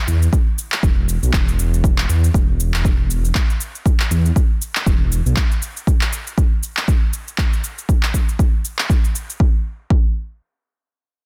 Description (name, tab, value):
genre	afro house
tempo	119 BPM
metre	4/4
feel	swing 57% on 16ths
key	E minor pentatonic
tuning	A4 = 441 Hz
part	warm analog pad	sustained chords	0.0-1.3 s	D3 to E4	-56 LUFS	equal	none
part	dark detuned saw bass	bass	0.1-5.3 s	E1 to E2	-19 LUFS	equal	sidechain pumping
part	electronic shaker and handclaps	drums	0.1-9.4 s	none	-26 LUFS	equal	none
part	electronic kick drum	drums	0.3-10.1 s	none	-18 LUFS	equal	none
room	little or no reverb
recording	dense, heavily limited modern master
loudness	-18 LUFS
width	mono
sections	0.0-9.4 A section; 9.4-11.3 B section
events	none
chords	0.0 Em7; 1.3 E5; 9.4 N.C.